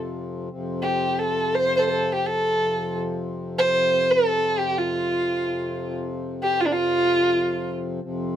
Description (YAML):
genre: indian classical, Hindustani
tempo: free time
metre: none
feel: none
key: unclear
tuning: A4 = 441 Hz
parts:
  - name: hand-pumped harmonium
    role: drone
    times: 0.0-8.4 s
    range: F2 to C3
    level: -29 LUFS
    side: left 2 dB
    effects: none
  - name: dark violin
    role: melody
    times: 0.8-7.7 s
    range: D4 to C5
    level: -21 LUFS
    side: right 1 dB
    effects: plate reverb
room: light reverb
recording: none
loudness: -21 LUFS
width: side -10 dB against mid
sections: 0.0-8.0 A section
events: none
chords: none